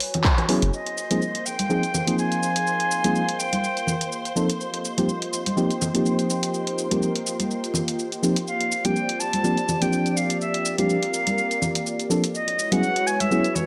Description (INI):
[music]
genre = deep house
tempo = 124 BPM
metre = 4/4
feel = swing 56% on 16ths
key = unclear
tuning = A4 = 440 Hz
[part]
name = reedy silver concert flute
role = melody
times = 0.0-4.4, 8.5-13.7 s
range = Cb5 to A5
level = -28 LUFS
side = equal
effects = none
[part]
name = punchy analog drum machine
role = drums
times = 0.0-13.7 s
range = handclaps, hi-hat, rim click, shaker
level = -31 LUFS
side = equal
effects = none
[part]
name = warbly tape-like pad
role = texture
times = 0.0-13.7 s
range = C4 to C6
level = -36 LUFS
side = equal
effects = chorus, built-in reverb, sidechain pumping
[part]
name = congas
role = percussion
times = 0.1-13.7 s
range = none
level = -32 LUFS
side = equal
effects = sidechain pumping on perc
[part]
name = mellow FM electric piano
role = stabs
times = 0.5-13.4 s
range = F3 to A4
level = -27 LUFS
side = equal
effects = chorus, sidechain pumping, low-pass filter, tape echo
[part]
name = smooth synth bass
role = bass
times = 0.6-0.7 s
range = Gb1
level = -25 LUFS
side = equal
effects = sidechain pumping
[part]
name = warm analog pad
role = sustained chords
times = 1.1-13.7 s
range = Ab3 to Eb5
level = -35 LUFS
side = equal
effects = chorus, sidechain pumping
[part]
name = soft string machine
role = texture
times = 0.7-8.5 s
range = C5 to C6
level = -38 LUFS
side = equal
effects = ensemble chorus
[sound]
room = moderate plate reverb, RT60 1.2 s, digital ambience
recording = none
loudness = -24 LUFS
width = mono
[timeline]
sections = 0.7-13.7 A section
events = band accent 0.2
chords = 0.0 Gb9sus4; 0.7 Bb9sus4; 4.4 F9sus4; 8.5 C9sus4; 12.3 Gb9sus4